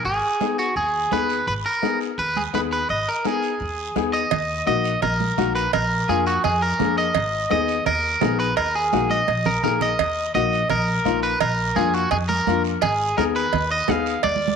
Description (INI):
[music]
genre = latin, cumbia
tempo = 169 BPM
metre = 4/4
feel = straight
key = Eb harmonic minor from 4.3 s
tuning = A4 = 440 Hz
[part]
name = electric guitar at the edge of break-up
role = melody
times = 0.0-14.6 s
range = Gb4 to F5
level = -22 LUFS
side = right 1 dB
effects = none
[part]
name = upright bass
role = bass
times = 0.0-14.5 s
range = Ab1 to F2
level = -28 LUFS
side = equal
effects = none
[part]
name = guiro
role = percussion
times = 0.1-14.6 s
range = none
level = -38 LUFS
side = right 16 dB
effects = none
[part]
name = warm upright piano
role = accompaniment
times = 0.4-14.1 s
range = Bb3 to Ab4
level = -25 LUFS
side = left 12 dB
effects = none
[part]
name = congas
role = percussion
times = 0.4-14.6 s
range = none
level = -28 LUFS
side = right 14 dB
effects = none
[part]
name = cowbell and timbales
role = percussion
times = 4.3-14.4 s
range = none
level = -26 LUFS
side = right 16 dB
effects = none
[sound]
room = moderate spring reverb, RT60 1.6 s, small room ambience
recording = 1960s-style stereo with parts hard left and right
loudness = -19 LUFS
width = side -6 dB against mid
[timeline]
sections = 0.0-4.3 A section; 4.3-14.6 B section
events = drum fill 8.9-10.0, 14.2-14.6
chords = 0.0 Abm; 4.3 Ebm; 5.7 Bb7; 7.2 Abm; 8.6 Ebm; 11.4 Bb; 12.8 Abm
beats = | 0.05 0.40 0.76 1.11 | 1.47 1.83 2.18 2.54 | 2.89 3.25 3.60 3.96 | 4.32 4.67 5.03 5.38 | 5.74 6.09 6.45 6.80 | 7.15 7.51 7.86 8.22 | 8.57 8.93 9.28 9.64 | 9.99 10.35 10.70 11.05 | 11.41 11.76 12.12 12.47 | 12.82 13.18 13.53 13.88 | 14.24